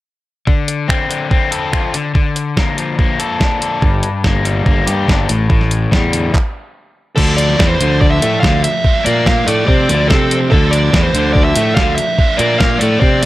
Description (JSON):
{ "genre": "indie rock", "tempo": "144 BPM", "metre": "4/4", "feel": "straight", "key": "D minor", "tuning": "A4 = 440 Hz", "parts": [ { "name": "crunchy overdriven guitar", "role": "riff", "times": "0.5-13.3 s", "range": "G2 to A4", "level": "-18 LUFS", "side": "left 4 dB", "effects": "none" }, { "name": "detuned 8-bit digital drum machine", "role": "drums", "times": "0.5-13.3 s", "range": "crash cymbal, finger snaps, handclaps, hi-hat, kick drum, snare drum", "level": "-14 LUFS", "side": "equal", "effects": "none" }, { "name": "fuzz fingered electric bass", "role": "bass", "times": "3.8-13.3 s", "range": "G1 to C3", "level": "-16 LUFS", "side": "equal", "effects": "overdrive" }, { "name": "dark smooth lead guitar", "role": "melody", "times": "7.2-13.3 s", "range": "A4 to F5", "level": "-16 LUFS", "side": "equal", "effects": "overdrive, analog delay" }, { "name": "sludgy distorted guitar", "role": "riff", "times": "7.2-13.3 s", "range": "F3 to F4", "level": "-21 LUFS", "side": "right 8 dB", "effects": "overdrive, lush chorus, analog delay" } ], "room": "light reverb, digital ambience", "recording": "none", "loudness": "-12 LUFS", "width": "side -16 dB against mid", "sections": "0.5-7.2 A section; 7.2-13.3 B section", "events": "stop 6.3-7.2", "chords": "0.5 Dm7; 1.9 Bbmaj7/D; 3.8 Gm; 5.3 A7(no3); 7.2 Dm" }